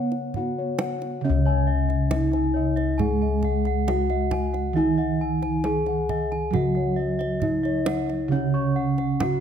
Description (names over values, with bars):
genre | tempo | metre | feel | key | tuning
Javanese gamelan | 68 BPM | 4/4 | straight | C# slendro | A4 = 441 Hz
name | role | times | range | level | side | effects
gamelan-type bronze metallophone | melody | 0.0-9.4 s | B3-40c to G#4+20c | -27 LUFS | left 1 dB | none
gamelan-type bronze metallophone | accompaniment | 0.0-9.4 s | C#3 to B3-40c | -28 LUFS | right 6 dB | none
gamelan-type bossed gongs | arpeggios | 0.0-9.4 s | C#5 to C#6 | -32 LUFS | left 5 dB | none
gamelan-type bossed gongs | bass | 0.0-9.4 s | C#2 to F#4-20c | -27 LUFS | left 3 dB | none
kendang | percussion | 0.1-9.4 s | none | -31 LUFS | right 5 dB | none
gamelan-type bronze metallophone | arpeggios | 1.2-9.4 s | C#5 to G#5+20c | -32 LUFS | right 8 dB | none
room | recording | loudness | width
light reverb | close, detailed microphones | -21 LUFS | side -8 dB against mid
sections
0.0-1.2 A section; 1.2-9.4 A section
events
none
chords
none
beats
0.36 | 1.24 2.12 3.00 3.89 | 4.77 5.65 6.53 7.42 | 8.30 9.19